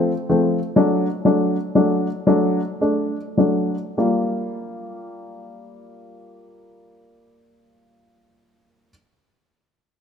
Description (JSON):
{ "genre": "pop", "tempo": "32-44 BPM (dotted quarters)", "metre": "6/8", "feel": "straight", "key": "G minor", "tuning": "A4 = 438 Hz", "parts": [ { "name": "dark upright piano", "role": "accompaniment", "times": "0.0-8.9 s", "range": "F3 to F4", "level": "-18 LUFS", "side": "left 1 dB", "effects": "none" } ], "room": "moderate plate reverb, RT60 3.0 s", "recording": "none", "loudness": "-17 LUFS", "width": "side -7 dB against mid", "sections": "0.0-4.0 A section; 4.0-7.7 B section", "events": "slowing down 0.0-4.0", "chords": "0.0 F; 0.8 D; 4.0 Gm7", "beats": "| 0.77 2.28 | 3.99 5.83" }